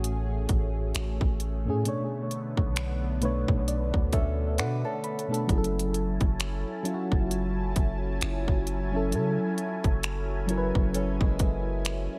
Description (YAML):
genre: contemporary R&B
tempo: 66 BPM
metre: 4/4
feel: swing 58% on 16ths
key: F# minor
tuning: A4 = 440 Hz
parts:
  - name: mellow FM electric piano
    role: accompaniment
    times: 0.0-12.2 s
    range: A2 to B5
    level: -33 LUFS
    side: equal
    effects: chorus, tremolo, tape echo
  - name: lush unison pad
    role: sustained chords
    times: 0.0-12.2 s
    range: D3 to A5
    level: -39 LUFS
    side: equal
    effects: chorus, phaser, sidechain pumping
  - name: long sustained 808-style bass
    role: bass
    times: 0.0-12.1 s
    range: F#1 to C#3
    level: -33 LUFS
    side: equal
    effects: none
  - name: trap drum kit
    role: drums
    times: 0.0-12.1 s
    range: finger snaps, hi-hat, kick drum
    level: -30 LUFS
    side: equal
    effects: none
  - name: fingerpicked acoustic archtop guitar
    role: arpeggios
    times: 4.1-12.2 s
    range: G#3 to C#5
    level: -40 LUFS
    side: equal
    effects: tape echo
room: little or no reverb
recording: echo-heavy mix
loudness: -28 LUFS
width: mono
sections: 0.0-12.2 A section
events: FM electric piano fill 2.8-5.5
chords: 0.0 Amaj7; 1.9 Bm9; 5.5 F#m7